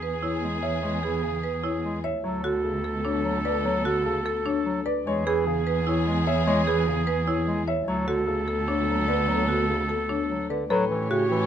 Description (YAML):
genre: classical, minimalist pattern music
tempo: 298 BPM (eighths)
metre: 7/8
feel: straight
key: unclear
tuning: A4 = 440 Hz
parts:
  - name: warm baby grand piano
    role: melody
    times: 0.0-11.4 s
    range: G4 to E5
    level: -33 LUFS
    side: left 6 dB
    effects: none
  - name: warm oboe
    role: second line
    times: 0.0-11.5 s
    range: G#4 to C#5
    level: -31 LUFS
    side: right 2 dB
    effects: none
  - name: warm symphonic string section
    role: sustained chords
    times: 0.0-11.5 s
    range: B3 to A4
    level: -34 LUFS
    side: left 2 dB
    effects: none
  - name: marimba with medium hard mallets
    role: arpeggios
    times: 0.0-11.4 s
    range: D4 to C#5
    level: -28 LUFS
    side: right 1 dB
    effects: none
  - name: warm cello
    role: bass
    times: 0.0-11.5 s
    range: D2 to A2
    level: -29 LUFS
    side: right 2 dB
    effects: none
  - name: warm bass clarinet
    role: accompaniment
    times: 0.4-11.5 s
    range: C#3 to G#3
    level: -29 LUFS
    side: left 1 dB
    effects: none
room: little or no reverb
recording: close, detailed microphones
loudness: -23 LUFS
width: side -9 dB against mid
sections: 0.0-10.7 A section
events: none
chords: 0.0 E; 2.2 Bm7/D; 5.1 E; 7.9 Bm7/D; 10.7 A13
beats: 0.03 0.23 0.43 0.63 | 0.83 1.03 1.24 1.44 1.64 1.84 2.04 | 2.24 2.44 2.65 2.85 3.05 3.25 3.45 | 3.65 3.85 4.05 4.26 4.46 4.66 4.86 | 5.06 5.26 5.46 5.67 5.87 6.07 6.27 | 6.47 6.67 6.87 7.08 7.28 7.48 7.68 | 7.88 8.08 8.28 8.48 8.69 8.89 9.09 | 9.29 9.49 9.69 9.89 10.10 10.30 10.50 | 10.70 10.90 11.10 11.30